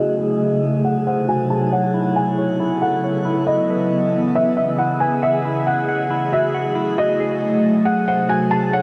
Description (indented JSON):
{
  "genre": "hip hop",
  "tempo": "137 BPM",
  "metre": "4/4",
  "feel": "half-time",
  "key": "unclear",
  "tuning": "A4 = 438 Hz",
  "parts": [
    { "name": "felt-muted upright piano", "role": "melody", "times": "0.0-8.8 s", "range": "D#5 to A5", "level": "-23 LUFS", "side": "equal", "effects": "low-pass filter, digital delay" },
    { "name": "ethereal airy pad", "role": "sustained chords", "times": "0.0-8.8 s", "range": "B#2 to D#5", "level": "-22 LUFS", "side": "equal", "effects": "ensemble chorus, built-in reverb, phaser, low-pass filter" },
    { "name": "semi-hollow electric guitar", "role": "arpeggios", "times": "0.0-8.8 s", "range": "E4 to F#5", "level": "-27 LUFS", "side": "equal", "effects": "low-pass filter, digital delay" }
  ],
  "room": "moderate shimmer reverb, RT60 4.0 s",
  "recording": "dark, warm production, nothing above 10.6 kHz",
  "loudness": "-19 LUFS",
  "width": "mono",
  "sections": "0.0-8.8 A section",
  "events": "filter sweep 0.0-8.8",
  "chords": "0.0 G#7b9; 1.7 B9sus4; 3.5 C#m9; 5.2 F#m9; 7.0 G#7b9"
}